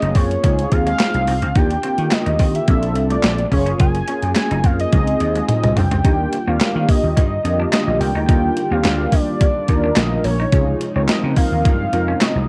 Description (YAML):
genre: early-eighties boogie funk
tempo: 107 BPM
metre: 4/4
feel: straight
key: Eb major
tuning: A4 = 441 Hz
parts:
  - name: fat analog lead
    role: melody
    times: 0.0-12.5 s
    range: Db5 to Ab5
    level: -25 LUFS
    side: equal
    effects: chorus
  - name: mellow synth brass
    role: accompaniment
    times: 0.0-12.5 s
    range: C3 to Bb4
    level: -25 LUFS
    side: equal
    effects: chorus
  - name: semi-hollow electric guitar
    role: riff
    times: 0.0-12.3 s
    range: Ab3 to F4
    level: -32 LUFS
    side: equal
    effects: lush chorus
  - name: vintage slap bass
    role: bass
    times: 0.0-12.5 s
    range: Gb1 to Eb3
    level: -23 LUFS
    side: equal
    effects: none
  - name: clean 12-bit digital drum machine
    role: drums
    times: 0.0-12.4 s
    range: handclaps, hi-hat, kick drum, snare drum, toms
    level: -20 LUFS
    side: equal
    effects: cassette tape
  - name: chorused pulse-width pad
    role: sustained chords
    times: 6.0-12.5 s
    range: C3 to F4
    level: -30 LUFS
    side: equal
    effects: none
room: light reverb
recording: home recording on cassette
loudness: -17 LUFS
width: mono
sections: 0.0-6.0 A section; 6.0-12.5 B section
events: drum fill 4.9-6.0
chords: 0.4 Dbmaj9; 1.6 Ebmaj9; 2.7 Bbmaj9; 3.5 Gbmaj9; 4.9 Dbmaj9; 6.0 Ebmaj9; 10.5 Dbmaj9